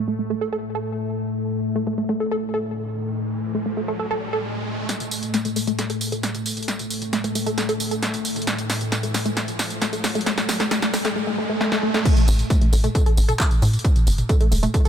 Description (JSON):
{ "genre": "driving peak-time techno", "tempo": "134 BPM", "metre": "4/4", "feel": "straight", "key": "unclear", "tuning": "A4 = 439 Hz", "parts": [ { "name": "tight sequenced synth", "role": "riff", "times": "0.0-14.9 s", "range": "A3 to A4", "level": "-26 LUFS", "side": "equal", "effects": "chorus, overdrive, sidechain pumping, ping-pong delay" }, { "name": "deep dark ambient pad", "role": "drone", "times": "0.0-11.2 s", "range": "A2 to A3", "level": "-27 LUFS", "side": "left 2 dB", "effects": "chorus, built-in reverb, sidechain pumping" }, { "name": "riser and swell", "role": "sound effects", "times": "2.3-12.1 s", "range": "none", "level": "-32 LUFS", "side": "right 2 dB", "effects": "none" }, { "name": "techno drum kit", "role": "drums", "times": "4.9-14.9 s", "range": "crash cymbal, handclaps, hi-hat, snare drum, tambourine, toms", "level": "-25 LUFS", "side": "right 1 dB", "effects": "overdrive, high-pass filter on snare, low-pass filter on snare, sidechain pumping on hats, high-pass filter on hats, low-pass filter on hats, sidechain pumping on perc, high-pass filter on perc, low-pass filter on perc, sidechain pumping on toms, high-pass filter on toms, low-pass filter on toms, sidechain pumping on cymbals, high-pass filter on cymbals, low-pass filter on cymbals" }, { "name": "electronic kick drum", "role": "drums", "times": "12.1-14.8 s", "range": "none", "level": "-18 LUFS", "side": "equal", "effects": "overdrive" }, { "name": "tight sequencer bass", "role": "bass", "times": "12.3-14.7 s", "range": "E1 to A2", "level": "-19 LUFS", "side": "equal", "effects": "sidechain pumping" } ], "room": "light reverb, digital ambience", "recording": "none", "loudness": "-20 LUFS", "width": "side -9 dB against mid", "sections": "0.0-4.9 A section; 4.9-12.1 B section; 12.1-14.9 C section", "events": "filter sweep on synth arpeggio sound 0.0-4.9; riser 2.3-4.9, 4.9-12.1; build-up 4.9-12.1; drum fill 4.9-11.2, 11.6-12.1; swell 11.2-12.1; drop 12.1-14.9", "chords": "0.0 N.C.; 12.1 A5" }